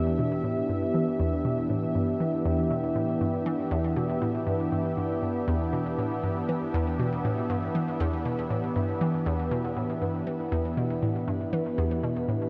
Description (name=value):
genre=ambient, sequencer-driven space music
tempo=119 BPM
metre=4/4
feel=straight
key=E minor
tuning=A4 = 436 Hz
part: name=sweeping resonant pad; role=sustained chords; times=0.0-12.5 s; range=E3 to E5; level=-30 LUFS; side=equal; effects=chorus, shimmer reverb
part: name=hollow square pluck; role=riff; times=0.0-12.5 s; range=E2 to E3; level=-32 LUFS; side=equal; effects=chorus, delay
room=wet lush hall reverb, RT60 2.6 s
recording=dreamy mix soaked in reverb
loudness=-28 LUFS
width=mono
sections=0.0-12.5 A section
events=none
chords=0.0 Em7